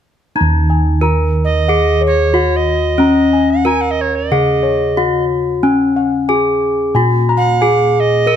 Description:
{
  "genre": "Javanese gamelan",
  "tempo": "91 BPM",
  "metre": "4/4",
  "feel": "straight",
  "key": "Eb slendro",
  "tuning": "A4 = 440 Hz",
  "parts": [
    { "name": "gamelan-type bronze metallophone", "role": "melody", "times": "0.4-8.4 s", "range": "Db4-25c to Bb4", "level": "-15 LUFS", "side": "left 1 dB", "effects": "none" },
    { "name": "gamelan-type bossed gongs", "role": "arpeggios", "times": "0.4-8.4 s", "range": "Db5-25c to Bb5", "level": "-21 LUFS", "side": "left 8 dB", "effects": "none" },
    { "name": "gamelan-type bossed gongs", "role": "bass", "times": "0.4-8.4 s", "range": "Eb2 to Bb4", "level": "-16 LUFS", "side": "equal", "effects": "none" },
    { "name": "bright reedy alto recorder", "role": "second line", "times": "1.4-8.4 s", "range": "Db5-27c to Ab5", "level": "-18 LUFS", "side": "right 7 dB", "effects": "none" }
  ],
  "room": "light reverb",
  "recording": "close, detailed microphones",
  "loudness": "-12 LUFS",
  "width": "side -9 dB against mid",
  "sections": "0.4-8.4 A section",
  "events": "none",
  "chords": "none",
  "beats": "| 0.35 1.01 1.67 2.33 | 2.99 3.65 4.31 4.97 | 5.63 6.29 6.95 7.61 | 8.27"
}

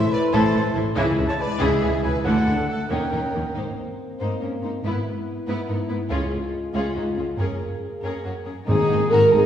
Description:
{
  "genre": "cinematic, heroic adventure film score",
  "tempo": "94 BPM (dotted quarters)",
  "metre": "6/8",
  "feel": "straight",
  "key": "unclear",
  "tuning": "A4 = 440 Hz",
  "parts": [
    { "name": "dark cor anglais", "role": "second line", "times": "0.0-3.6, 8.7-9.5 s", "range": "Ab4 to A5", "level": "-28 LUFS", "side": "right 1 dB", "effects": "none" },
    { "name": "rich symphonic violin section", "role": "second line", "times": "0.0-9.5 s", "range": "Db4 to E5", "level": "-32 LUFS", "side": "left 2 dB", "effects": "none" },
    { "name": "dark French horn section", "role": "sustained chords", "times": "0.0-9.5 s", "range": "G#3 to Bb4", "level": "-24 LUFS", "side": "equal", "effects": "none" },
    { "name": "warm symphonic violin section", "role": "melody", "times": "0.3-9.5 s", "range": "D#4 to C5", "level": "-32 LUFS", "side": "left 2 dB", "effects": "none" },
    { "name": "rich studio viola section", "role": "accompaniment", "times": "0.3-9.4 s", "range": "E3 to E4", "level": "-29 LUFS", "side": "right 1 dB", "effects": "none" },
    { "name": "clear symphonic cello section", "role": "bass", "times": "0.3-9.4 s", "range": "Db2 to D#3", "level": "-28 LUFS", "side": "right 1 dB", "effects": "none" },
    { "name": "clear symphonic double bass section", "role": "bass", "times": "0.3-9.4 s", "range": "Gb1 to D#2", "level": "-28 LUFS", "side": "right 1 dB", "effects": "none" },
    { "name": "concert flute", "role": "second line", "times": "8.7-9.5 s", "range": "Ab5 to Bb5", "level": "-32 LUFS", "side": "left 4 dB", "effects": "none" },
    { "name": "mellow tuba", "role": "bass", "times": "8.7-9.4 s", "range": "Ab1", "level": "-26 LUFS", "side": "equal", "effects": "none" },
    { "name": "timpani", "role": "percussion", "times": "8.7-9.3 s", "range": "Ab2", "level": "-25 LUFS", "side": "left 3 dB", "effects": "none" }
  ],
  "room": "wet scoring stage reverb, RT60 1.8 s",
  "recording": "heard from further back in the room, small room ambience",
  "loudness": "-20 LUFS",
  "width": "side -10 dB against mid",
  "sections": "0.0-3.6 A section; 3.6-8.7 B section",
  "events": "none",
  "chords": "0.0 Am; 1.0 C#m; 2.3 D; 2.9 D#7; 3.6 Abadd9; 4.8 E/G#; 6.1 Db; 7.4 Gbadd9; 8.7 Abadd9",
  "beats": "0.34 | 0.97 1.61 | 2.25 2.91 | 3.57 4.21 | 4.85 5.48 | 6.11 6.75 | 7.39 8.04 | 8.69 9.33"
}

